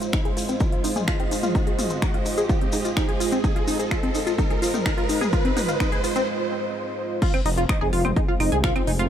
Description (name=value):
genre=melodic techno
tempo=127 BPM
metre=4/4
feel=straight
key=F minor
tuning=A4 = 440 Hz
part: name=dark analog pad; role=sustained chords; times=0.0-9.1 s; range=Ab3 to Eb5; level=-29 LUFS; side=right 2 dB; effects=chorus, sidechain pumping
part: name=tight sequenced synth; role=arpeggios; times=0.0-9.1 s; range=C4 to Ab5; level=-26 LUFS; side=equal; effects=chorus, phaser, sidechain pumping, digital delay
part: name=techno drum kit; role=drums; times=0.0-9.1 s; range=claves, crash cymbal, finger snaps, hi-hat, toms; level=-30 LUFS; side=left 1 dB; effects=overdrive
part: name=maracas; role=percussion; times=0.0-6.3 s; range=none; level=-36 LUFS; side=left 4 dB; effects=none
part: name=riser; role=sound effects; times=0.0-6.3 s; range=none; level=-30 LUFS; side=right 1 dB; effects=none
part: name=electronic kick drum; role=drums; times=0.1-8.7 s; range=none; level=-24 LUFS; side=equal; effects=overdrive
part: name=swelling detuned saw bass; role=bass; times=7.5-9.1 s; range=F1 to C2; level=-24 LUFS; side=equal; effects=sidechain pumping
room=light reverb, digital ambience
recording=none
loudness=-20 LUFS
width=side -9 dB against mid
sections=0.0-7.2 A section; 7.2-9.1 B section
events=build-up 0.0-7.2; riser 0.0-6.3; filter sweep on synth arpeggio sound 0.0-7.2; break 6.3-7.2; drop 7.2-9.1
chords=0.0 Fm